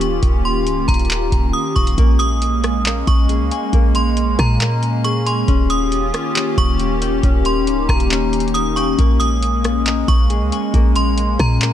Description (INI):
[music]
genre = hip hop, atmospheric cloud-rap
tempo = 137 BPM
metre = 4/4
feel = half-time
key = Bb dorian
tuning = A4 = 439 Hz
[part]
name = hollow soft pad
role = sustained chords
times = 0.0-11.7 s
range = Eb3 to G4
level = -20 LUFS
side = left 2 dB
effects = chorus, sidechain pumping
[part]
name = clean 808-style bass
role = bass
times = 0.0-11.7 s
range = Db1 to Bb2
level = -19 LUFS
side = equal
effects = none
[part]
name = booming analog drum machine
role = drums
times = 0.0-11.7 s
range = handclaps, hi-hat, kick drum, rim click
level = -17 LUFS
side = equal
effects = none
[part]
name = metallic FM bell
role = melody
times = 0.5-11.7 s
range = Bb5 to Eb6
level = -23 LUFS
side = right 2 dB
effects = chorus, ping-pong delay
[part]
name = concert harp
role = arpeggios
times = 2.0-11.7 s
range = Bb3 to Ab5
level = -27 LUFS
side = left 5 dB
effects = ping-pong delay
[sound]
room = little or no reverb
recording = none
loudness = -14 LUFS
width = side -10 dB against mid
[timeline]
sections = 0.0-2.0 A section; 2.0-11.7 B section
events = none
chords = 0.0 Eb7; 2.0 Bbm7; 5.5 Eb7; 9.0 Bbm7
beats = | 0.23 0.67 1.10 1.54 | 1.98 2.42 2.85 3.29 | 3.73 4.17 4.61 5.04 | 5.48 5.92 6.36 6.80 | 7.24 7.67 8.11 8.55 | 8.99 9.42 9.86 10.30 | 10.74 11.18 11.61